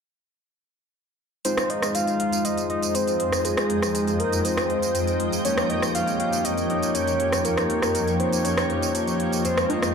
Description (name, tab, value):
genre	progressive house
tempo	120 BPM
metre	4/4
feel	straight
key	F minor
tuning	A4 = 438 Hz
part	soft octave-layered synth lead	melody	1.4-9.9 s	Ab4 to F5	-26 LUFS	left 1 dB	chorus, digital delay
part	shimmering ambient pad	sustained chords	2.3-9.9 s	F2 to G5	-28 LUFS	right 1 dB	chorus, built-in reverb, phaser
part	soft supersaw	stabs	1.4-9.9 s	F2 to Db5	-26 LUFS	equal	low-pass filter, dub echo
part	deep house drum kit	drums	1.4-9.9 s	hi-hat, rim click, tambourine	-28 LUFS	right 2 dB	studio reverb
part	congas	percussion	9.7-9.8 s	none	-30 LUFS	left 2 dB	overdrive, studio reverb
room	moderate lush hall reverb, RT60 2.1 s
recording	dark, warm production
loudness	-21 LUFS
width	side -6 dB against mid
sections	1.4-9.9 A section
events	none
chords	1.4 Fm7; 5.4 Eb7/F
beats	| 1.45 1.95 2.45 2.95 | 3.45 3.95 4.45 4.95 | 5.45 5.95 6.45 6.95 | 7.45 7.95 8.45 8.95 | 9.45